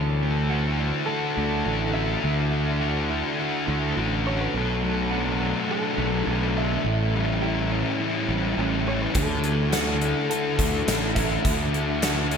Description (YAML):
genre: rock, shoegaze and dream pop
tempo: 104 BPM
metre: 4/4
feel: straight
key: D major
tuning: A4 = 438 Hz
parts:
  - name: electric guitar through a small old amp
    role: melody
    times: 0.0-12.0 s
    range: A4 to E5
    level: -32 LUFS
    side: equal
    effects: ping-pong delay
  - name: overdriven semi-hollow guitar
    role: riff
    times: 0.0-12.4 s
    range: A2 to G4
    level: -31 LUFS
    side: right 9 dB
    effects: reverse reverb
  - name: thick fuzz guitar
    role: riff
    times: 0.0-12.4 s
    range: A2 to F#4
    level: -26 LUFS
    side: left 4 dB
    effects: distortion, lush chorus
  - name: fuzz fingered electric bass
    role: bass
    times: 0.0-12.4 s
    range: A1 to D2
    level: -27 LUFS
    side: equal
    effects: overdrive
  - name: gated 80s drum kit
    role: drums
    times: 9.1-12.4 s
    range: hi-hat, kick drum, snare drum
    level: -26 LUFS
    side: equal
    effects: none
room: wet huge ambient reverb, RT60 7.3 s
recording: dreamy mix soaked in reverb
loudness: -22 LUFS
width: side -6 dB against mid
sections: 0.0-12.4 A section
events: none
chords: 0.0 Dadd9; 4.5 Bm7; 6.8 A7; 9.1 Dadd9